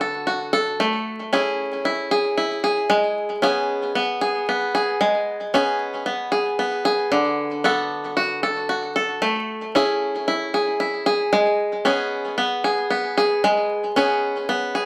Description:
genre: folktronica.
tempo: 114 BPM.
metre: 4/4.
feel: swing 56% on 16ths.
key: unclear.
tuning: A4 = 439 Hz.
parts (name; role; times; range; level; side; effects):
bluegrass banjo; solo; 0.0-14.9 s; D3 to A4; -22 LUFS; equal; digital delay.
room: moderate studio reverb, RT60 0.5 s.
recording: vinyl crackle.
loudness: -22 LUFS.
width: mono.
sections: 0.0-14.9 A section.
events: none.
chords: 0.0 Bm7; 0.8 Amaj7; 2.9 G#madd11; 7.1 Bm7; 9.2 Amaj7; 11.3 G#madd11.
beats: 0.27 | 0.80 1.32 1.85 2.38 | 2.90 3.43 3.96 4.48 | 5.01 5.54 6.06 6.59 | 7.11 7.64 8.17 8.69 | 9.22 9.74 10.27 10.80 | 11.32 11.85 12.38 12.90 | 13.43 13.96 14.48.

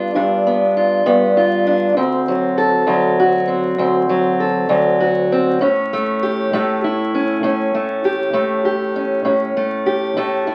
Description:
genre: blues.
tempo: 66 BPM (dotted quarters).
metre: 12/8.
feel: straight.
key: unclear.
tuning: A4 = 439 Hz.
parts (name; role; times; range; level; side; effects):
fingerpicked steel-string acoustic guitar; solo; 0.0-10.5 s; D2 to A4; -17 LUFS; equal; none.
room: wet studio reverb, RT60 0.6 s.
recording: very old 78 rpm record, vinyl crackle.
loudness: -17 LUFS.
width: mono.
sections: 0.0-10.5 A section.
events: none.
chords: 0.0 G7; 2.0 D7; 5.6 A7.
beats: 0.15 1.06 | 1.97 2.88 3.79 4.71 | 5.62 6.53 7.44 8.35 | 9.26 10.16.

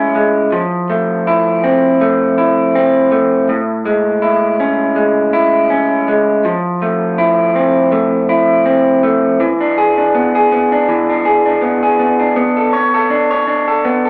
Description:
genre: indie pop.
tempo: 81 BPM.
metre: 4/4.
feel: swing 55% on 16ths.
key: unclear.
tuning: A4 = 445 Hz.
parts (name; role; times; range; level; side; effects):
electric guitar through a small old amp; solo; 0.0-14.1 s; A2 to C#5; -14 LUFS; equal; warbly pitch drift.
room: moderate studio reverb, RT60 0.8 s.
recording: none.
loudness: -13 LUFS.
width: mono.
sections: 0.0-9.4 A section; 9.4-14.1 B section.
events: none.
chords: 0.0 Amaj7; 0.5 Fmaj7; 3.5 Amaj7; 6.4 Fmaj7; 9.4 E7; 12.4 Bm9.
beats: | 0.53 1.26 2.00 2.74 | 3.48 4.22 4.96 5.70 | 6.44 7.18 7.92 8.66 | 9.40 10.14 10.88 11.62 | 12.37 13.11 13.85.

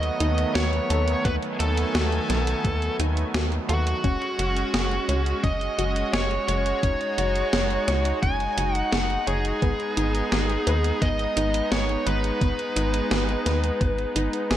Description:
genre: synthwave.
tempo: 86 BPM.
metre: 4/4.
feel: straight.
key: unclear.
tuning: A4 = 440 Hz.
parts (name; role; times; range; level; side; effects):
bluesy overdriven lead guitar; melody; 0.0-14.6 s; F#4 to G#5; -27 LUFS; equal; distortion, tape echo.
brassy analog pad; sustained chords; 0.0-14.6 s; D#3 to G#5; -29 LUFS; right 2 dB; chorus, sidechain pumping.
wide unison pluck; arpeggios; 0.0-14.6 s; B3 to C#5; -33 LUFS; left 2 dB; vintage 12-bit sampler grit, tape echo.
tight sequencer bass; bass; 0.0-14.6 s; F#1 to D#2; -26 LUFS; equal; none.
gated 80s digital drum machine; drums; 0.0-14.6 s; hi-hat, snare drum; -29 LUFS; equal; gated reverb, gated reverb snare.
electronic kick drum; drums; 1.2-13.9 s; none; -25 LUFS; equal; none.
room: light reverb.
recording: none.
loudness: -22 LUFS.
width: side -12 dB against mid.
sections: 0.0-14.6 A section.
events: none.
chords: 0.0 B7; 4.0 F#sus2; 9.6 G#m.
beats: 0.55 | 1.25 1.95 2.65 3.34 | 4.04 4.74 5.44 6.13 | 6.83 7.53 8.23 8.93 | 9.62 10.32 11.02 11.72 | 12.41 13.11 13.81 14.51.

